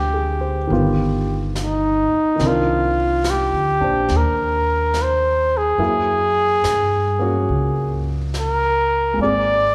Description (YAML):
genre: jazz ballad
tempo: 71 BPM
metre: 4/4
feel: swing 67% on 8ths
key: unclear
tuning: A4 = 440 Hz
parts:
  - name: breathy trumpet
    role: melody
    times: 0.0-9.7 s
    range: D#4 to D5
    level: -21 LUFS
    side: equal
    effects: none
  - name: warm upright piano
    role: accompaniment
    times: 0.0-9.7 s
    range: D3 to C5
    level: -28 LUFS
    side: equal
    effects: none
  - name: upright bass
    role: bass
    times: 0.0-9.7 s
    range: G1 to G2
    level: -25 LUFS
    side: equal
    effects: none
  - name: jazz brush drum kit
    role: drums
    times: 0.7-9.7 s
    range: brushed snare drum, hi-hat, snare drum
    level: -36 LUFS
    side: equal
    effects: none
room: moderate recital hall reverb, RT60 1.6 s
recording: recorded in a church or concert hall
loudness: -19 LUFS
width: mono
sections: 0.0-9.7 A section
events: none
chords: 0.0 Dm7b5; 0.7 Gaug7; 2.4 Cm9; 5.8 Gb9; 9.2 Abadd9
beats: 0.70 1.55 | 2.40 3.25 4.10 4.95 | 5.79 6.65 7.50 8.35 | 9.20